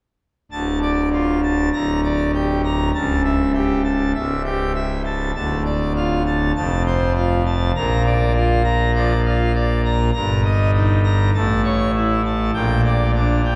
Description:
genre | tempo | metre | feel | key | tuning
classical, organ toccata | 100 BPM | 4/4 | straight | D minor | A4 = 439 Hz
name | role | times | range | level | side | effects
pipe organ, full organ | solo | 0.5-13.6 s | C#1 to Bb5 | -19 LUFS | equal | none
room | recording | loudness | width
wet church reverb, RT60 2.7 s | heard from further back in the room | -19 LUFS | mono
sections
0.5-13.6 A section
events
none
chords
0.5 Dm; 1.7 Gm/D; 2.9 A7/C#; 5.4 Dm; 6.6 F; 7.8 Bb; 10.1 Eb/G; 11.3 A; 12.5 Gm/Bb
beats
| 0.52 1.12 1.73 2.34 | 2.95 3.55 4.16 4.76 | 5.36 5.96 6.56 7.16 | 7.75 8.35 8.95 9.55 | 10.14 10.74 11.34 11.94 | 12.54 13.14

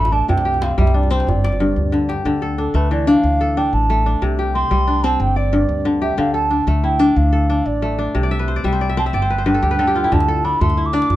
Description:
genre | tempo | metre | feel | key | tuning
west african traditional, West African string and xylophone music | 122 BPM (dotted quarters) | 12/8 | straight | D dorian | A4 = 436 Hz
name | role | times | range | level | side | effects
mellow baroque flute | melody | 0.0-11.2 s | A4 to D6 | -20 LUFS | right 3 dB | none
kora | arpeggios | 0.0-11.2 s | G2 to E5 | -19 LUFS | left 2 dB | none
upright bass | bass | 0.0-11.2 s | G1 to D2 | -20 LUFS | equal | none
djembe | percussion | 0.0-2.2, 10.1-11.2 s | none | -22 LUFS | right 1 dB | none
room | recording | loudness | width
little or no reverb | dark, warm production | -15 LUFS | side -14 dB against mid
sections
0.0-2.3 A section; 2.3-11.2 B section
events
drum fill 1.8-2.3; flute solo 2.3-11.2; kora fill 8.2-10.1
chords
0.3 C5; 1.3 G5; 2.3 Dm; 4.2 C5; 5.2 G5; 6.2 Dm; 8.2 C5; 9.1 G5; 10.1 D5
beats
| 0.29 0.78 1.27 1.76 | 2.25 2.75 3.24 3.73 | 4.22 4.71 5.20 5.69 | 6.18 6.68 7.17 7.66 | 8.15 8.64 9.13 9.62 | 10.12 10.61 11.10

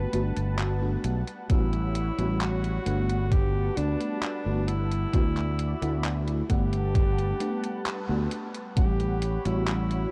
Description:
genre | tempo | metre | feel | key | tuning
vaporwave | 66 BPM | 4/4 | straight | G lydian | A4 = 440 Hz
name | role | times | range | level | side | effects
clear alto saxophone | melody | 0.0-10.1 s | D4 to B4 | -36 LUFS | equal | tape echo
mellow FM electric piano | accompaniment | 0.0-10.1 s | G3 to F#5 | -35 LUFS | equal | ensemble chorus, analog delay
lush unison pad | sustained chords | 0.0-10.1 s | G3 to B5 | -42 LUFS | equal | chorus, vintage 12-bit sampler grit
fingered electric bass | bass | 0.0-10.0 s | G1 to D2 | -30 LUFS | equal | none
detuned 8-bit digital drum machine | drums | 0.1-10.1 s | handclaps, hi-hat | -39 LUFS | equal | small room ambience
electronic kick drum | drums | 1.5-9.0 s | none | -26 LUFS | equal | small room ambience
room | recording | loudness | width
light reverb, digital ambience | dark, warm production, cassette tape | -27 LUFS | mono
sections
0.0-8.8 A section; 8.8-10.1 B section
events
band accent 7.9-8.3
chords
0.0 Gmaj9; 1.5 A13; 3.3 Gmaj9; 5.1 D69; 6.5 Gmaj9; 8.8 A13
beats
0.59 | 1.50 2.41 3.31 4.22 | 5.13 6.04 6.95 7.86 | 8.77 9.68

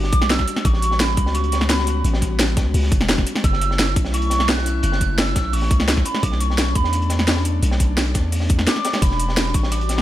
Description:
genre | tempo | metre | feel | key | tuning
liquid drum and bass | 172 BPM | 4/4 | straight | unclear | A4 = 445 Hz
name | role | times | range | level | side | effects
hollow clarinet-like synth lead | melody | 0.0-10.0 s | B5 to F#6 | -25 LUFS | right 2 dB | lush chorus, ping-pong delay
airy breathy pad | sustained chords | 0.0-10.0 s | G3 to F#4 | -28 LUFS | left 2 dB | chorus, sidechain pumping
long sustained 808-style bass | bass | 0.0-10.0 s | E1 to E2 | -21 LUFS | equal | none
crunchy breakbeat drum kit | drums | 0.0-10.0 s | hi-hat, snare drum | -28 LUFS | equal | high-pass filter on hats, studio reverb, high-pass filter on snare, high-pass filter on room
drum and bass drum kit | drums | 0.1-10.0 s | hi-hat, ride cymbal, snare drum | -22 LUFS | equal | studio reverb
electronic kick drum | drums | 0.1-9.6 s | none | -19 LUFS | equal | studio reverb
room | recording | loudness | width
digital ambience | none | -16 LUFS | side -13 dB against mid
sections
0.0-10.0 A section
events
none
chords
0.0 Em9; 0.6 A13; 3.3 F#m7; 6.2 Bm9; 9.0 Em9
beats
0.30 | 0.65 1.00 1.35 1.70 | 2.04 2.39 2.74 3.09 | 3.44 3.79 4.14 4.49 | 4.84 5.18 5.53 5.88 | 6.23 6.58 6.93 7.28 | 7.63 7.97 8.32 8.67 | 9.02 9.37 9.72

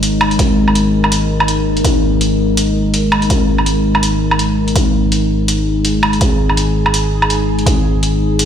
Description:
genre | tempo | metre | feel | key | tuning
half-time drum and bass | 165 BPM | 4/4 | swing 56% on 16ths, half-time | unclear | A4 = 440 Hz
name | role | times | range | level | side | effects
deep dark ambient pad | sustained chords | 0.0-8.5 s | G#3 to A#4 | -16 LUFS | left 2 dB | chorus, built-in reverb
growling 808-style bass | bass | 0.0-8.5 s | G#1 | -15 LUFS | equal | tube saturation
electronic hi-hat and woodblock | drums | 0.0-8.5 s | none | -17 LUFS | right 1 dB | none
room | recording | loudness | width
light reverb, digital ambience | played on a big sound system in a bare room, stone room reverb | -12 LUFS | side -8 dB against mid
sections
0.0-8.5 A section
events
none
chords
0.0 G#5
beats
0.03 | 0.39 0.76 1.12 1.48 | 1.85 2.21 2.57 2.94 | 3.30 3.67 4.03 4.39 | 4.76 5.12 5.48 5.85 | 6.21 6.57 6.94 7.30 | 7.67 8.03 8.39

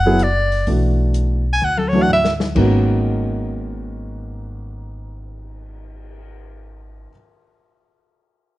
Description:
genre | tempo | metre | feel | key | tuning
modal jazz | 127 BPM | 4/4 | swing 69% on 8ths | unclear | A4 = 442 Hz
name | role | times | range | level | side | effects
warm soprano saxophone | melody | 0.0-2.3 s | A4 to G#5 | -18 LUFS | equal | plate reverb
upright bass | bass | 0.0-7.1 s | F#1 to D2 | -22 LUFS | equal | none
warm concert grand piano | accompaniment | 0.1-7.1 s | G#2 to G#4 | -20 LUFS | equal | none
open jazz drum kit | drums | 0.2-6.3 s | crash cymbal, cymbal swell, hi-hat, kick drum, snare drum, toms | -22 LUFS | left 2 dB | none
room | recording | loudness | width
moderate studio reverb, RT60 0.7 s | nothing above 10.8 kHz | -15 LUFS | side -16 dB against mid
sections
0.0-2.6 A section; 2.6-6.3 B section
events
soprano saxophone solo 0.0-2.6; drum fill 1.6-2.6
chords
0.0 Bm11; 2.6 G#m11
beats
0.20 | 0.67 1.15 1.62 2.09 | 2.56 3.04 3.51 3.98 | 4.45 4.93 5.40 5.87

